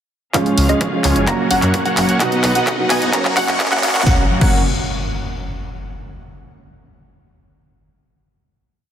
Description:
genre	EDM, festival progressive house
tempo	129 BPM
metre	4/4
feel	straight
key	F# major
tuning	A4 = 440 Hz
part	dark baby grand piano	accompaniment	0.3-4.6 s	B2 to F#4	-21 LUFS	right 3 dB	sidechain pumping, digital delay
part	rich studio string section	sustained chords	0.3-4.3 s	C#3 to F#5	-25 LUFS	left 2 dB	sidechain pumping, low-pass filter
part	wide unison pluck	arpeggios	0.3-4.6 s	D#5 to A#5	-24 LUFS	left 1 dB	none
part	dense compressed supersaw	riff	0.3-4.6 s	G#3 to A#5	-21 LUFS	equal	sidechain pumping, low-pass filter, digital delay
part	big-room dance drum kit	drums	0.3-4.5 s	crash cymbal, handclaps, hi-hat, snare drum	-21 LUFS	left 1 dB	none
part	electronic kick drum	drums	0.3-4.5 s	none	-19 LUFS	equal	overdrive, high-pass filter on kick, high-pass filter on room
part	riser and impact	sound effects	2.7-5.9 s	none	-26 LUFS	left 1 dB	none
part	wide detuned saw bass	bass	0.6-4.6 s	F#1 to F#2	-21 LUFS	equal	chorus, sidechain pumping
room	moderate huge ambient reverb, RT60 3.8 s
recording	dense, heavily limited modern master, high-pass filter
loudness	-14 LUFS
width	side -9 dB against mid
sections	0.3-4.1 build; 4.1-5.9 final chord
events	build-up 0.3-4.1; drum fill 0.3-4.1; filter sweep on supersaw synth 0.3-4.1; filter sweep on synth pluck 0.3-4.1; filter sweep 0.3-4.1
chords	0.3 C#; 1.3 F#; 2.2 B; 3.1 F#

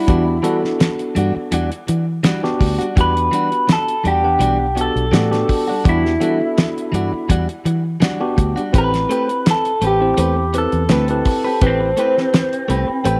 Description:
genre	straight-eighth soul blues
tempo	83 BPM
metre	4/4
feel	swing 53% on 16ths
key	E minor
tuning	A4 = 440 Hz
part	electric guitar through a small old amp	melody	0.0-13.0 s	C4 to B4	-21 LUFS	equal	phaser
part	direct-recorded clean electric guitar	stabs	0.0-13.2 s	E3 to B4	-26 LUFS	equal	tape echo
part	tine electric piano	accompaniment	0.1-13.2 s	B3 to B5	-24 LUFS	equal	none
part	fingered electric bass	bass	0.1-13.2 s	A1 to E3	-22 LUFS	equal	none
part	damped 70s drum kit	drums	0.1-13.2 s	hi-hat, kick drum, snare drum	-20 LUFS	equal	none
room	moderate spring reverb, RT60 2.1 s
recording	none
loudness	-17 LUFS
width	mono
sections	0.0-13.2 A section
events	clean electric guitar solo 0.0-13.2; tine electric piano fill 12.3-13.2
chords	0.0 Em9; 8.7 Am9

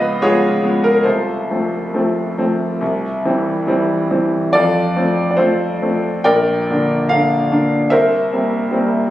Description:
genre	classical, romantic character piece for solo piano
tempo	66-80 BPM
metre	4/4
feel	rubato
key	F major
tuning	A4 = 440 Hz
part	clear grand piano	solo	0.0-9.1 s	Bb1 to G5	-14 LUFS	equal	none
room	light reverb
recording	recorded on a phone in the room, club reverb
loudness	-14 LUFS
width	side -14 dB against mid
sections	0.0-9.1 A section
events	none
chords	0.0 Db7; 1.1 F/C; 2.8 C; 4.5 F; 6.3 Gm/Bb; 7.9 C7

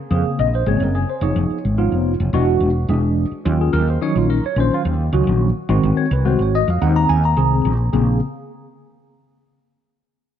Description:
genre	jazz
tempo	107 BPM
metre	4/4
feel	straight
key	Bb minor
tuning	A4 = 441 Hz
part	tine electric piano	accompaniment	0.1-8.2 s	Db3 to Bb5	-19 LUFS	equal	medium stereo tremolo, phaser
part	woody fretless electric bass	bass	0.1-8.2 s	E1 to F2	-18 LUFS	equal	lush chorus
room	moderate lush hall reverb, RT60 2.1 s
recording	bright 1980s-style digital production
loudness	-16 LUFS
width	side -10 dB against mid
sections	0.0-7.9 A section; 7.9-10.2 B section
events	none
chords	0.0 Bbm9; 1.2 Fm7b5; 2.3 E9; 3.5 Ebm9; 5.7 Ab7; 7.9 Bbm9

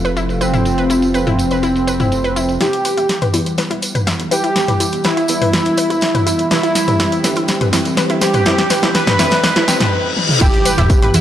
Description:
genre	melodic techno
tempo	123 BPM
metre	4/4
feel	straight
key	unclear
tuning	A4 = 440 Hz
part	lush unison pad	sustained chords	0.0-11.2 s	C3 to F#5	-22 LUFS	equal	chorus, sidechain pumping
part	analog pluck	arpeggios	0.0-11.2 s	E4 to B5	-22 LUFS	equal	chorus, sidechain pumping, analog delay
part	fat analog bass	bass	0.0-11.2 s	E1 to E2	-24 LUFS	equal	sidechain pumping, high-pass filter
part	house drum kit	drums	0.0-11.2 s	crash cymbal, hi-hat, snare drum, toms	-18 LUFS	equal	low-pass filter on hats, studio ambience, low-pass filter on toms, low-pass filter on snare, low-pass filter on cymbals
part	tambourine	percussion	0.1-11.2 s	none	-26 LUFS	right 2 dB	none
part	soft supersaw	melody	0.4-11.0 s	C4 to B4	-17 LUFS	equal	sidechain pumping, tape echo
part	filtered dub chord stab	stabs	0.4-9.9 s	C4 to F5	-26 LUFS	left 2 dB	phaser, sidechain pumping, analog delay
part	riser, reverse cymbal and impact	sound effects	6.4-11.2 s	none	-24 LUFS	left 1 dB	none
part	electronic kick drum	drums	10.4-11.0 s	none	-13 LUFS	equal	studio ambience
room	moderate lush hall reverb, RT60 1.6 s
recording	dry, gritty hardware recording, cassette tape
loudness	-13 LUFS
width	side -11 dB against mid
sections	0.0-2.6 A section; 2.6-10.4 B section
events	filter sweep on supersaw synth 0.0-2.6; build-up 2.6-10.4; drum fill 2.6-9.9, 10.2; filter sweep on synth arpeggio sound 2.6-10.4; filter sweep on analog synth pad 2.6-10.4; reverse cymbal 9.5-10.4; impact 10.4-11.2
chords	0.0 F; 2.6 Emadd9; 6.5 C; 10.4 Emadd9

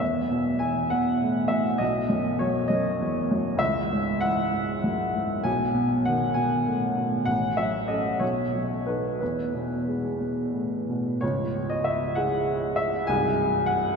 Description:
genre	classical, romantic character piece for solo piano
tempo	58-68 BPM (dotted quarters)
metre	6/8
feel	rubato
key	E major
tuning	A4 = 436 Hz
part	clear baby grand piano	solo	0.0-14.0 s	B#0 to G#5	-23 LUFS	equal	none
room	wet cathedral reverb, RT60 5.8 s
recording	minimal, uncompressed stereo recording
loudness	-23 LUFS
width	side -5 dB against mid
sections	0.0-11.2 A section; 11.2-14.0 B section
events	none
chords	0.0 E5; 1.8 B; 3.6 C#m; 5.5 G#m/B; 7.3 F#m/A; 8.2 B7; 9.2 E; 11.2 C#m; 13.1 G#/B#

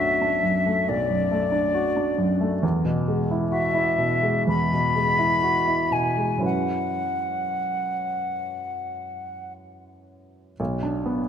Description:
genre	classical, impressionist duo for flute and grand piano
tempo	56-69 BPM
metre	4/4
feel	rubato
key	B minor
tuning	A4 = 440 Hz
part	silver concert flute	melody	0.0-9.5 s	D5 to B5	-24 LUFS	left 3 dB	none
part	warm baby grand piano	accompaniment	0.0-11.3 s	B1 to B4	-24 LUFS	right 1 dB	none
room	moderate concert hall reverb, RT60 1.9 s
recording	none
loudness	-21 LUFS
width	side -8 dB against mid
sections	0.0-10.6 A section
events	none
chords	0.0 Bm7; 2.6 Eadd9; 6.4 F#7sus4; 10.6 Bm

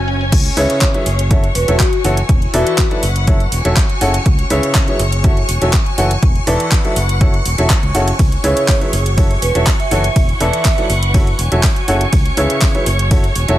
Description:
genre	piano house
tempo	122 BPM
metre	4/4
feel	straight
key	F# minor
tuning	A4 = 439 Hz
part	string machine, violins	sustained chords	0.0-13.6 s	C#6 to G#6	-25 LUFS	equal	ensemble chorus, sidechain pumping
part	warm upright piano	riff	0.0-13.6 s	C#3 to F#5	-19 LUFS	equal	sidechain pumping, dub echo
part	fingered electric bass	bass	0.0-13.6 s	E1 to C#2	-17 LUFS	equal	sidechain pumping, low-pass filter
part	muted studio string section	texture	0.0-13.6 s	C#4 to G#5	-25 LUFS	left 1 dB	sidechain pumping
part	garage drum kit	drums	0.1-13.6 s	crash cymbal, handclaps, hi-hat, ride cymbal	-21 LUFS	equal	overdrive, low-pass filter on hats, small room ambience, low-pass filter on cymbals, low-pass filter on snare
part	electronic kick drum	drums	0.3-13.2 s	none	-14 LUFS	equal	overdrive, small room ambience
part	vibraphone with medium mallets	melody	0.6-2.7, 8.4-10.8 s	F#4 to E5	-22 LUFS	right 1 dB	dub echo
room	digital ambience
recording	none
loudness	-12 LUFS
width	side -14 dB against mid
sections	0.3-13.6 A section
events	drop 0.3-13.6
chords	0.3 C#m7; 1.1 F#m7; 2.3 E7sus4; 3.0 F#m7; 4.3 C#m7; 5.0 F#m7; 6.2 E7sus4; 7.0 F#m7; 8.2 C#m7; 8.9 F#m7; 10.2 E7sus4; 10.9 F#m7; 12.1 C#m7; 12.9 F#m7

